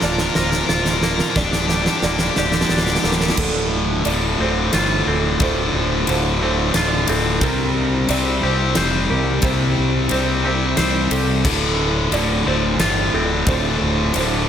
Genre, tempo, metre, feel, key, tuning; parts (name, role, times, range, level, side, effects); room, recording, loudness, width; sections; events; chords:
post-rock; 89 BPM; 3/4; straight; D minor; A4 = 439 Hz
evolving wavetable pad; sustained chords; 0.3-14.5 s; C3 to F4; -31 LUFS; right 1 dB
felt-muted upright piano; arpeggios; 0.0-14.5 s; A4 to D5; -28 LUFS; right 6 dB; slapback echo
twangy electric guitar; arpeggios; 0.0-14.5 s; D2 to C5; -26 LUFS; left 2 dB; slapback echo
cranked stack guitar; riff; 0.0-14.5 s; D2 to Bb4; -21 LUFS; left 7 dB; overdrive
distorted electric guitar; riff; 0.0-14.5 s; D2 to C4; -25 LUFS; right 11 dB; distortion
fuzz fingered electric bass; bass; 0.0-14.5 s; D1 to C2; -23 LUFS; equal; overdrive
huge arena drum kit; drums; 0.0-14.3 s; crash cymbal, kick drum, ride cymbal, snare drum; -22 LUFS; equal
light reverb; -16 LUFS; side -9 dB against mid
0.0-3.4 A section; 3.4-14.5 B section
build-up 0.0-3.4; drum fill 0.0-3.4
0.0 Bb/D; 1.4 Gm7/D; 3.4 Dm7; 7.4 C7; 11.5 Dm7